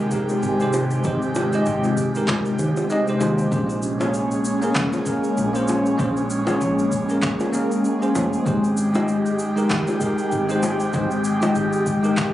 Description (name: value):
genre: sunset chillout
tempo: 97 BPM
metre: 4/4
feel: swing 57% on 16ths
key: Bb dorian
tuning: A4 = 440 Hz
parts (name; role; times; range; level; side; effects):
- bell-like tine electric piano; accompaniment; 0.0-12.3 s; Ab3 to Eb5; -23 LUFS; left 1 dB; medium stereo tremolo, auto-pan, digital delay
- airy breathy pad; sustained chords; 0.0-12.3 s; C3 to G4; -24 LUFS; equal; chorus, phaser
- electronic cabasa and handclaps; drums; 0.1-12.3 s; none; -31 LUFS; equal; overdrive, studio reverb
- electronic kick drum; drums; 0.1-12.3 s; none; -28 LUFS; equal; overdrive, studio reverb
- bongos; percussion; 0.3-11.5 s; none; -27 LUFS; left 1 dB; none
- woody fretless electric bass; bass; 0.4-12.3 s; F1 to Eb2; -26 LUFS; equal; tube saturation
- wind-like tuned noise texture; texture; 4.5-12.3 s; G4 to G5; -35 LUFS; equal; built-in reverb
room: moderate plate reverb, RT60 2.4 s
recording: recorded on a phone in the room, club reverb, nothing above 10.8 kHz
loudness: -19 LUFS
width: side -13 dB against mid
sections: 0.0-3.5 A section; 3.5-12.3 A section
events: none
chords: 0.0 Abmaj7; 3.5 Bbm9; 8.5 Abmaj7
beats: 0.43 | 1.05 1.67 2.28 2.90 | 3.52 4.14 4.76 5.38 | 5.99 6.61 7.23 7.85 | 8.47 9.09 9.71 10.32 | 10.94 11.56 12.18